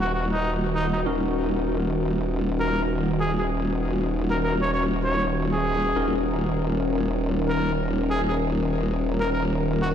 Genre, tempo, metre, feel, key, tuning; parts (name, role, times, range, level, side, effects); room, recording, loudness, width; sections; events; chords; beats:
glitch hop; 98 BPM; 4/4; swing 58% on 16ths; Eb minor; A4 = 440 Hz
warm trumpet; melody; 0.0-9.9 s; Eb4 to Db5; -28 LUFS; right 1 dB; vintage 12-bit sampler grit, ping-pong delay
warm analog pad; sustained chords; 0.0-9.9 s; Eb3 to Bb4; -27 LUFS; left 1 dB; chorus
tine electric piano; stabs; 0.0-9.9 s; Db4 to Bb4; -31 LUFS; left 2 dB; overdrive, medium stereo tremolo, low-pass filter, ping-pong delay
formant-sweep wobble bass; bass; 0.0-9.9 s; Eb1; -26 LUFS; equal; chorus, tube saturation
light reverb, digital ambience; played on a big sound system in a bare room, large studio reverb; -22 LUFS; side -8 dB against mid
0.0-9.9 A section
filter sweep on tine electric piano 0.0-9.9; filter sweep on analog synth pad 0.0-9.9
0.0 Ebm7
0.45 | 1.06 1.67 2.29 2.90 | 3.51 4.12 4.74 5.35 | 5.96 6.57 7.18 7.80 | 8.41 9.02 9.63